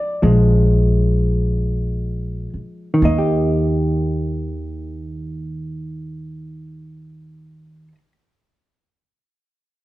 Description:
jazz ballad; 41-46 BPM; 4/4; swing 67% on 8ths; Eb major; A4 = 444 Hz
hollow-body jazz guitar; accompaniment; 0.0-8.1 s; Eb3 to Eb5; -20 LUFS; equal
upright bass; bass; 0.2-7.9 s; Bb1 to Eb2; -21 LUFS; equal
moderate large studio reverb, RT60 0.9 s; dark, warm production; -16 LUFS; side -17 dB against mid
0.0-3.0 A section; 3.0-8.9 B section
slowing down 0.0-3.0
0.2 Bb7(no3); 3.0 Eb

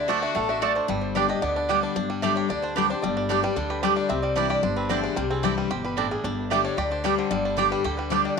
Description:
bluegrass; 224 BPM; 4/4; straight; G major; A4 = 440 Hz
bluegrass banjo; melody; 0.0-8.4 s; D3 to G4; -30 LUFS; right 5 dB
lap resonator guitar; melody; 0.0-8.4 s; G4 to F#5; -29 LUFS; equal; slapback echo
rich fiddle; second line; 0.0-0.7 s; F#4 to A4; -33 LUFS; left 11 dB
picked steel-string acoustic guitar; accompaniment; 0.0-8.4 s; G2 to G4; -27 LUFS; left 12 dB
upright bass; bass; 0.0-8.4 s; G1 to D2; -33 LUFS; right 1 dB
mandolin; stabs; 0.1-8.2 s; A3 to A5; -28 LUFS; right 12 dB
moderate plate reverb, RT60 2.6 s; 1960s-style stereo with parts hard left and right; -22 LUFS; side -5 dB against mid
0.0-2.0 A section; 2.0-8.4 B section
0.0 D; 0.9 G; 2.0 Gsus2; 4.1 Cadd9; 6.2 Gsus2

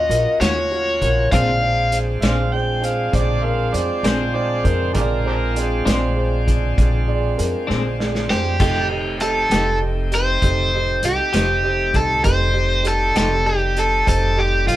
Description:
slow blues; 66 BPM (dotted quarters); 12/8; straight; Bb mixolydian; A4 = 439 Hz
overdriven electric guitar; melody; 0.0-2.0, 8.3-14.8 s; F4 to F5; -18 LUFS; equal
warm concert grand piano; accompaniment; 0.0-14.8 s; D4 to D5; -26 LUFS; right 4 dB
bright tonewheel organ; sustained chords; 0.0-14.8 s; G3 to G4; -28 LUFS; equal; slow rotary speaker, overdrive
upright bass; bass; 0.0-14.8 s; F1 to F2; -22 LUFS; equal
vintage drum kit; drums; 0.1-14.8 s; crash cymbal, hi-hat, kick drum, snare drum; -24 LUFS; equal
clean electric guitar; accompaniment; 0.4-13.3 s; Bb2 to G4; -24 LUFS; left 3 dB; tremolo
overdriven harmonica; second line; 2.2-5.6 s; D4 to G5; -25 LUFS; right 3 dB
moderate studio ambience, RT60 0.5 s; band playing live in one room; -16 LUFS; side -14 dB against mid
0.0-14.8 A section
drum fill 7.7-8.6
0.0 Ebm7; 1.3 Bb9; 8.6 F9

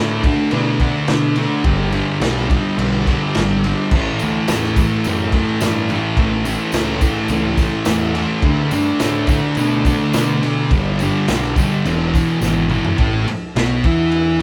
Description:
garage rock duo or trio; 106 BPM; 4/4; straight; A4 = 439 Hz
thick fuzz guitar; riff; 0.0-14.4 s; E2 to E4; -20 LUFS; equal; distortion
growling picked electric bass; bass; 0.0-14.4 s; E1 to B2; -25 LUFS; equal; overdrive, tube saturation
crunchy breakbeat drum kit; drums; 0.2-14.3 s; crash cymbal, kick drum, ride cymbal, snare drum, toms; -23 LUFS; equal
tambourine; percussion; 4.2-12.8 s; -39 LUFS; equal
moderate small room reverb, RT60 0.5 s; band playing live in one room; -17 LUFS; mono
0.0-13.0 A section; 13.0-14.4 B section
drum fill 12.4-13.0
0.0 D5; 1.6 G; 3.9 A; 8.4 D5; 10.7 G; 11.8 E; 13.0 A5

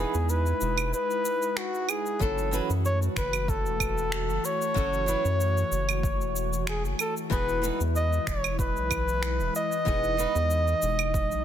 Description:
sunset chillout; 94 BPM; 4/4; straight; A4 = 440 Hz
mellow flugelhorn; melody; 0.0-11.4 s; F#4 to D#5; -28 LUFS; equal; vintage 12-bit sampler grit, tape echo
flamenco guitar; accompaniment; 0.0-10.4 s; E3 to B4; -34 LUFS; moving between left 6 dB and right 4 dB; auto-pan, digital delay
airy breathy pad; sustained chords; 0.0-11.4 s; E3 to F#4; -35 LUFS; left 1 dB; chorus, vintage 12-bit sampler grit
round analog bass; bass; 0.0-11.4 s; E1 to F#2; -29 LUFS; equal
electronic shaker, claves and finger snaps; drums; 0.1-11.4 s; -33 LUFS; right 4 dB; soft clipping on snare
electronic kick drum; drums; 2.2-11.3 s; -31 LUFS; equal; overdrive
light reverb; dense, heavily limited modern master; -24 LUFS; side -10 dB against mid
0.0-11.4 A section
0.0 Emaj7; 2.2 F#m7; 7.3 Emaj7

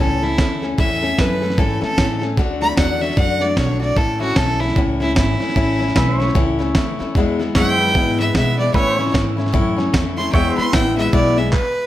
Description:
honky-tonk and classic country; 151 BPM; 4/4; swing 60% on 8ths; A major; A4 = 439 Hz
clear fiddle; melody; 0.0-11.9 s; E4 to C6; -21 LUFS; right 1 dB
picked steel-string acoustic guitar; accompaniment; 0.0-11.5 s; E2 to A4; -21 LUFS; left 4 dB
upright bass; bass; 0.0-11.5 s; G#1 to B2; -23 LUFS; right 1 dB
dusty soul sampler-style drum kit; drums; 0.2-11.6 s; handclaps, hi-hat, kick drum, snare drum; -20 LUFS; right 1 dB
pedal steel guitar; sustained chords; 6.0-11.5 s; B4 to E5; -26 LUFS; right 3 dB
moderate large studio reverb, RT60 1.1 s; -15 LUFS; side -13 dB against mid
0.0-11.9 A section
fiddle solo 0.0-11.9; stop 11.5-11.9
0.0 A; 2.4 D; 4.0 A; 7.2 E; 8.7 A; 10.3 E

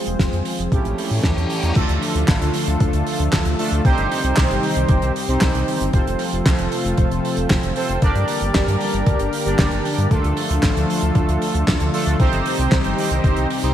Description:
italo disco; 115 BPM; 4/4; straight; A4 = 441 Hz
lush unison pad; sustained chords; 0.0-13.7 s; C3 to C5; -23 LUFS; left 1 dB; chorus
analog synth brass; stabs; 0.0-13.7 s; A3 to D5; -24 LUFS; right 2 dB; chorus, ping-pong delay
round analog bass; bass; 0.1-13.7 s; F1 to A2; -22 LUFS; equal; tube saturation
damped 70s drum kit; drums; 0.1-13.7 s; crash cymbal, handclaps, hi-hat, snare drum; -24 LUFS; right 1 dB
electronic kick drum; drums; 0.2-13.3 s; -20 LUFS; equal
reverse cymbal; sound effects; 1.0-1.8 s; -31 LUFS; left 2 dB
moderate lush hall reverb, RT60 2.2 s; bright 1980s-style digital production, vinyl crackle; -16 LUFS; side -10 dB against mid
0.0-1.8 A section; 1.8-13.7 B section
reverse cymbal 1.0-1.8
0.0 Fm; 0.7 A7; 1.8 Dm; 3.8 Cm; 5.9 F; 8.0 Gm; 10.1 Dm; 12.2 Cm

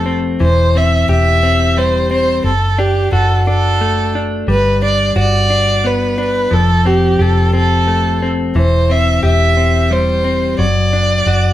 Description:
pop; 59 BPM (dotted quarters); 6/8; straight; A4 = 440 Hz
dark violin; melody; 0.0-11.5 s; G4 to E5; -16 LUFS; right 1 dB
direct-recorded clean electric guitar; accompaniment; 0.0-11.5 s; E3 to G4; -18 LUFS; left 2 dB
vintage muted fingered electric bass; bass; 0.0-11.5 s; E1 to G1; -15 LUFS; equal
moderate studio reverb, RT60 0.7 s; band playing live in one room; -11 LUFS; side -13 dB against mid
0.0-11.5 A section
0.4 C/E; 2.4 D/F#; 4.5 Gmaj7; 6.5 Fadd9; 8.6 C/E; 10.6 D/F#

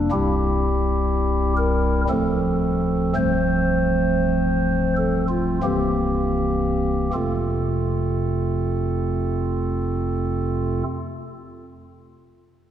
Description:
classical, chorale-style piece for pipe organ; 39-64 BPM; 3/4; rubato; F major; A4 = 440 Hz
pipe organ, stopped flute; solo; 0.0-10.8 s; C1 to C5; -20 LUFS; equal
wet church reverb, RT60 2.8 s; dark, warm production; -20 LUFS; side -10 dB against mid
0.0-7.1 A section; 7.1-11.7 B section
slowing down 0.0-7.1
0.1 C; 2.1 Dm7; 3.2 F/C; 5.7 C7; 7.1 F

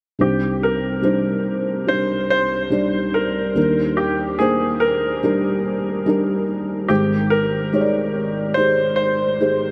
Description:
pop; 72 BPM; 4/4; straight; C minor; A4 = 440 Hz
clear concert grand piano; melody; 0.2-9.7 s; G4 to C5; -24 LUFS; equal; subtle chorus
felt-muted upright piano; accompaniment; 0.2-9.7 s; Ab1 to D5; -22 LUFS; equal
wet huge ambient reverb, RT60 8.0 s; dreamy mix soaked in reverb; -20 LUFS; mono
0.2-9.7 A section
0.2 Cmadd9; 3.6 Ebmaj7; 6.9 Abmaj7

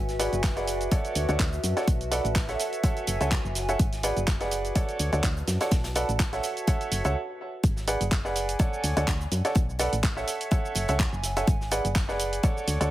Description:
piano house; 125 BPM; 4/4; swing 55% on 16ths; A4 = 439 Hz
solid FM bass; bass; 0.0-12.9 s; F#1 to F#2; -30 LUFS; equal; sidechain pumping
warbly tape-like pad; texture; 0.0-12.9 s; F#4 to A5; -36 LUFS; equal; chorus, built-in reverb, sidechain pumping
big rock drum kit; drums; 0.1-12.8 s; hi-hat, snare drum; -42 LUFS; left 2 dB
house drum kit; drums; 0.1-12.9 s; handclaps, hi-hat, shaker; -32 LUFS; right 1 dB
clear grand piano; riff; 0.2-12.9 s; G#4 to F#5; -29 LUFS; right 2 dB; sidechain pumping, low-pass filter, digital delay
electronic kick drum; drums; 0.4-12.5 s; -25 LUFS; equal
light reverb, studio reverb; heavily compressed radio sound; -24 LUFS; side -14 dB against mid
0.0-7.6 A section; 7.6-12.9 B section
stop 7.2-7.6; drop 7.6-12.9
0.0 G#m7b5; 0.9 Dmaj7; 1.9 Bm7; 2.6 F#m7; 3.8 G#m7b5; 4.8 Dmaj7; 5.7 Bm7; 6.4 F#m7; 7.6 G#m7b5; 8.6 Dmaj7; 9.6 Bm7; 10.3 F#m7; 11.5 G#m7b5

